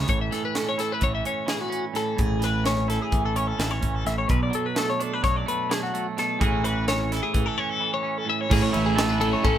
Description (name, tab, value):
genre	math rock and midwest emo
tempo	256 BPM (eighths)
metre	9/8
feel	straight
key	A major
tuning	A4 = 436 Hz
part	twangy electric guitar	accompaniment	0.0-9.6 s	A2 to A4	-28 LUFS	right 6 dB	none
part	twelve-string electric guitar	arpeggios	0.0-9.6 s	F#4 to E5	-26 LUFS	left 4 dB	phaser
part	growling fingered electric bass	bass	0.0-9.6 s	A1 to B1	-27 LUFS	equal	overdrive
part	crisp fusion drum kit	drums	0.1-9.6 s	crash cymbal, hi-hat, kick drum, ride cymbal, snare drum	-27 LUFS	equal	none
part	biting overdriven guitar	riff	8.5-9.6 s	A2 to E4	-26 LUFS	right 3 dB	none
room	light reverb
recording	band playing live in one room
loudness	-22 LUFS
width	side -10 dB against mid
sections	0.0-8.5 A section; 8.5-9.6 B section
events	break 7.5-8.5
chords	0.1 Amaj7; 4.3 Bm7; 6.4 A6; 8.5 Amaj7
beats	| 0.09 0.32 0.56 0.79 1.02 1.26 1.49 1.73 1.96 | 2.19 2.43 2.66 2.90 3.13 3.37 3.60 3.83 4.07 | 4.30 4.54 4.77 5.00 5.24 5.47 5.71 5.94 6.17 | 6.41 6.64 6.88 7.11 7.34 7.58 7.81 8.04 8.28 | 8.51 8.74 8.98 9.21 9.45